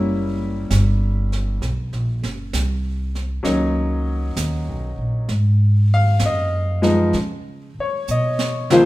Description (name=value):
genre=jazz ballad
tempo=66 BPM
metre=4/4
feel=swing 68% on 8ths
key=unclear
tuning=A4 = 440 Hz
part: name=clear baby grand piano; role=accompaniment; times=0.0-8.9 s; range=C#2 to E#5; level=-20 LUFS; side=left 1 dB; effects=none
part: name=upright bass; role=bass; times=0.0-8.9 s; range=F#1 to C#3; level=-20 LUFS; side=equal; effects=none
part: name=jazz brush drum kit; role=drums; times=0.7-8.9 s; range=brushed snare drum, hi-hat, snare drum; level=-29 LUFS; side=right 4 dB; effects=none
room=moderate large studio reverb, RT60 1.3 s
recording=minimal, uncompressed stereo recording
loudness=-18 LUFS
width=side -17 dB against mid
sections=0.0-8.9 A section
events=drum fill 8.1-8.9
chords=0.0 F#7b9; 1.6 Bmaj9; 5.3 G#m7; 7.1 C#7